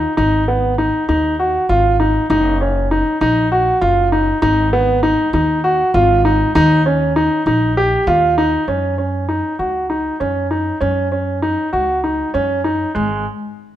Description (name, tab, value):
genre	contemporary instrumental, chamber music in an uneven meter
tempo	197 BPM (eighths)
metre	7/8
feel	straight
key	unclear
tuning	A4 = 440 Hz
part	clear baby grand piano	arpeggios	0.0-13.2 s	G#3 to G4	-15 LUFS	equal	none
part	upright bass	bass	0.0-13.2 s	F#1 to F#2	-20 LUFS	equal	none
room	moderate recital hall reverb, RT60 1.6 s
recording	dark, warm production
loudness	-14 LUFS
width	side -12 dB against mid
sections	0.0-8.7 A section; 8.7-13.0 B section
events	none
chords	0.2 G#5; 2.3 D#m/F#; 4.4 G#5; 6.6 D#5; 8.7 F#5; 13.0 N.C.